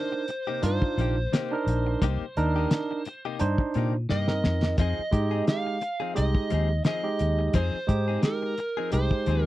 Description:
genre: straight-eighth soul blues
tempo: 87 BPM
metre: 4/4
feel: swing 54% on 16ths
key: C minor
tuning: A4 = 441 Hz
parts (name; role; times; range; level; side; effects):
- overdriven slide guitar; melody; 0.0-9.5 s; Bb4 to F5; -31 LUFS; right 1 dB; none
- barky tine electric piano; accompaniment; 0.0-9.5 s; Ab3 to C5; -29 LUFS; right 4 dB; overdrive
- direct-recorded clean electric guitar; stabs; 0.1-9.5 s; C3 to Ab4; -34 LUFS; left 10 dB; none
- cloth-damped thuddy drum kit; drums; 0.3-9.4 s; hi-hat, kick drum, snare drum; -26 LUFS; equal; none
- vintage muted fingered electric bass; bass; 0.6-9.5 s; Bb1 to Bb2; -26 LUFS; equal; none
room: little or no reverb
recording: dry, close 1970s-style studio recording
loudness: -24 LUFS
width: side -15 dB against mid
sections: 0.0-9.5 A section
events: drum fill 4.1-4.8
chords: 0.0 Cm7; 4.8 Fm7

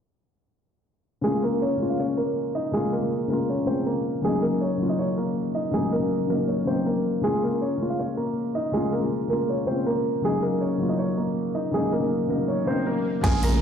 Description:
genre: hip hop, trap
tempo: 160 BPM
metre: 4/4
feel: half-time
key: Bb minor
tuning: A4 = 440 Hz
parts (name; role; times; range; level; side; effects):
- dark concert grand piano; melody; 1.2-13.6 s; Ab3 to Bb5; -26 LUFS; right 2 dB; digital delay
- felt-muted upright piano; accompaniment; 1.2-13.6 s; Db3 to Bb4; -25 LUFS; left 3 dB; none
- swell and downlifter; sound effects; 12.4-13.6 s; none; -35 LUFS; right 1 dB; none
- sweeping resonant pad; sustained chords; 13.2-13.6 s; Db3 to F4; -32 LUFS; right 3 dB; chorus, phaser
- long sustained 808-style bass; bass; 13.2-13.6 s; Bb1; -22 LUFS; right 1 dB; none
- trap drum kit; drums; 13.2-13.5 s; hi-hat, kick drum; -26 LUFS; right 1 dB; none
room: light reverb, digital ambience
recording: played on a big sound system in a bare room, large studio reverb, low-pass filter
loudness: -22 LUFS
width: side -7 dB against mid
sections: 1.2-13.2 A section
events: filter sweep 1.2-13.2; swell 12.4-13.2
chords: 1.2 Bbm7; 4.2 Ebm7; 7.2 Bbm7; 10.2 Ebm7

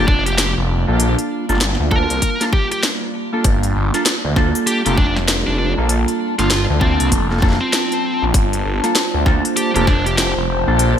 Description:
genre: glitch hop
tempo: 98 BPM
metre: 4/4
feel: swing 62% on 16ths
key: G minor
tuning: A4 = 439 Hz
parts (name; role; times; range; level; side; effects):
- high-gain lead guitar; melody; 0.0-10.3 s; C4 to Bb4; -23 LUFS; equal; distortion, digital delay
- warbly tape-like pad; sustained chords; 0.0-11.0 s; G3 to A5; -24 LUFS; right 1 dB; chorus, built-in reverb, sidechain pumping
- mellow electric guitar; stabs; 0.0-11.0 s; Bb3 to A5; -22 LUFS; right 1 dB; analog chorus, sidechain pumping, digital delay
- phased detuned saw bass; bass; 0.0-10.9 s; F1 to D2; -18 LUFS; equal; phaser, overdrive
- electronic kick drum; drums; 0.1-10.0 s; none; -16 LUFS; equal; studio reverb
- drum and bass drum kit; drums; 0.3-10.9 s; hi-hat, snare drum; -20 LUFS; left 1 dB; studio reverb, gated reverb
room: light reverb, digital ambience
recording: bright 1980s-style digital production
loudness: -14 LUFS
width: side -9 dB against mid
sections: 0.0-11.0 A section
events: none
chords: 0.0 Gm9

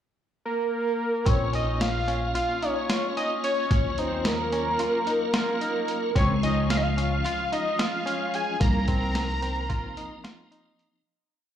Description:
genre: progressive instrumental, band music in an uneven meter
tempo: 221 BPM (eighths)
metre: 9/8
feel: straight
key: Bb minor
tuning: A4 = 439 Hz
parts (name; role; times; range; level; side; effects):
- fat analog lead; melody; 0.5-10.5 s; Bb4 to Bb5; -27 LUFS; equal; phaser, slapback echo, ping-pong delay
- tonewheel organ; accompaniment; 1.3-11.0 s; F3 to F4; -34 LUFS; right 1 dB; chorus vibrato, fast rotary speaker, slapback echo
- direct-recorded clean electric guitar; arpeggios; 1.3-10.9 s; Bb3 to F4; -34 LUFS; left 2 dB; slapback echo, ping-pong delay
- upright bass; bass; 1.3-9.7 s; Bb1 to Eb2; -27 LUFS; equal; none
- boom bap sampler-style drum kit; drums; 1.3-10.9 s; hi-hat, kick drum, snare drum; -28 LUFS; equal; none
room: light reverb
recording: live gig heard through the venue's PA, club reverb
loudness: -23 LUFS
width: side -10 dB against mid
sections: 0.0-1.3 pickup bar; 1.3-11.1 A section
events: fade-out 8.6-11.1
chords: 0.0 N.C.; 1.3 Bbm; 3.7 Ebm7; 6.2 Db; 8.6 F7sus4/C

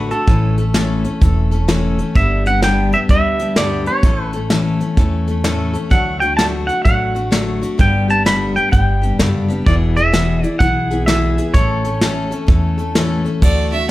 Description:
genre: honky-tonk and classic country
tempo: 128 BPM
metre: 4/4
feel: swing 64% on 8ths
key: unclear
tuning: A4 = 439 Hz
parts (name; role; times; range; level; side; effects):
- twangy electric guitar; melody; 0.0-12.9 s; A4 to B5; -18 LUFS; right 1 dB; none
- picked steel-string acoustic guitar; accompaniment; 0.0-13.9 s; E2 to A4; -19 LUFS; left 3 dB; none
- upright bass; bass; 0.0-13.9 s; E1 to E2; -19 LUFS; right 1 dB; none
- soft brush drum kit; drums; 0.1-13.8 s; crash cymbal, hi-hat, kick drum, snare drum; -16 LUFS; equal; none
- clear fiddle; second line; 13.4-13.9 s; D5 to E5; -19 LUFS; right 4 dB; none
room: light reverb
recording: none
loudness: -13 LUFS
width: side -16 dB against mid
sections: 0.0-13.4 A section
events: none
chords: 0.3 A; 2.2 G; 4.0 A; 5.9 D; 7.8 G; 9.7 E; 11.5 A

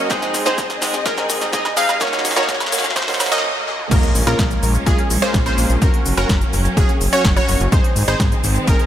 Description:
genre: EDM, festival progressive house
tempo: 126 BPM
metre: 4/4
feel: straight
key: Bb minor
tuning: A4 = 437 Hz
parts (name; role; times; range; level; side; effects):
- picked old ladder-braced acoustic guitar; accompaniment; 0.0-3.4 s; Ab2 to Ab4; -24 LUFS; right 2 dB; sidechain pumping, digital delay
- warm studio string section; sustained chords; 0.0-8.9 s; Eb2 to F5; -27 LUFS; left 1 dB; sidechain pumping
- wide unison pluck; arpeggios; 0.0-8.8 s; Ab4 to F5; -24 LUFS; equal; sidechain pumping, digital delay
- supersaw stab; riff; 0.0-8.8 s; Ab3 to F5; -22 LUFS; right 1 dB; sidechain pumping, digital delay
- riser, swell and impact; sound effects; 0.0-5.8 s; none; -30 LUFS; equal; none
- big-room dance drum kit; drums; 0.1-8.9 s; crash cymbal, hi-hat, shaker, snare drum, toms, woodblock; -22 LUFS; equal; overdrive, high-pass filter on snare, high-pass filter on hats, high-pass filter on perc, high-pass filter on toms, high-pass filter on cymbals, high-pass filter on room
- electronic kick drum; drums; 0.1-8.8 s; none; -18 LUFS; equal; overdrive
- fat analog bass; bass; 3.9-8.8 s; Gb1 to Bb1; -20 LUFS; equal; sidechain pumping
room: moderate lush hall reverb, RT60 2.2 s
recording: high-pass filter, faint mains hum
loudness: -15 LUFS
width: side -11 dB against mid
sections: 0.0-3.9 A section; 3.9-8.9 B section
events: build-up 0.0-3.9; drum fill 0.0-3.4, 3.7; riser 0.0-3.9; swell 3.0-3.9; stop 3.4-3.9; drop 3.9-8.9; impact 3.9-5.8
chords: 0.1 Ab; 2.0 Ebm7; 3.9 Bbm7; 5.8 Gb; 7.7 Ab

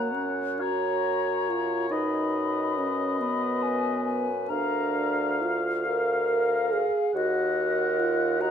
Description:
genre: classical, slow romantic movement for wind quintet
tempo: 42-48 BPM (dotted quarters)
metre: 6/8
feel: rubato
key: unclear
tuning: A4 = 440 Hz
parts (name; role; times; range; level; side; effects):
- hollow concert flute; melody; 0.0-8.5 s; D#5 to B5; -32 LUFS; left 11 dB; none
- warm oboe; second line; 0.0-8.5 s; C#5 to F#5; -31 LUFS; left 3 dB; none
- mellow French horn; accompaniment; 0.0-8.5 s; A#3 to A#4; -29 LUFS; equal; none
- mellow clarinet; accompaniment; 0.0-8.5 s; A#4 to D#5; -33 LUFS; right 10 dB; none
- warm bassoon; bass; 0.0-8.5 s; D2 to F#2; -31 LUFS; right 2 dB; none
room: moderate recital hall reverb, RT60 1.4 s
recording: close, detailed microphones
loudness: -24 LUFS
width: side -8 dB against mid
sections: 0.0-8.5 A section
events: none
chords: 0.0 F#; 1.9 B69/F#; 4.5 A#/D; 7.1 D#m

